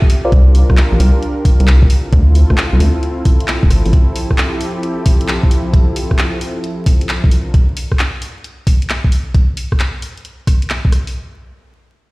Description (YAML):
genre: UK garage, two-step garage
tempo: 133 BPM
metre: 4/4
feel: swing 66% on 16ths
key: F major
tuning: A4 = 440 Hz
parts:
  - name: warm analog pad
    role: sustained chords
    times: 0.0-7.5 s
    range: C3 to Bb4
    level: -22 LUFS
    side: equal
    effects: chorus, sidechain pumping
  - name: electronic kick drum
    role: drums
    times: 0.0-10.9 s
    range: none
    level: -12 LUFS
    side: equal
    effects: studio reverb
  - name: garage drum kit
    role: drums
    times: 0.1-11.1 s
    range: handclaps, hi-hat, rim click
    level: -22 LUFS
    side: equal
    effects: studio reverb
  - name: rubbery square bass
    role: bass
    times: 0.3-3.9 s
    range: D1 to D2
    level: -9 LUFS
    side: equal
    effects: none
room: little or no reverb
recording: played on a big sound system in a bare room, stone room reverb, vinyl crackle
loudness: -11 LUFS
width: side -23 dB against mid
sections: 0.0-11.1 A section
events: none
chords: 0.1 C9sus4; 1.9 Dm9; 3.9 Fmaj9; 7.3 C9sus4; 9.1 N.C.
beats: | 0.32 0.77 1.22 1.68 | 2.13 2.58 3.03 3.48 | 3.93 4.38 4.83 5.28 | 5.74 6.19 6.64 7.09 | 7.54 7.99 8.44 8.89 | 9.34 9.79 10.25 10.70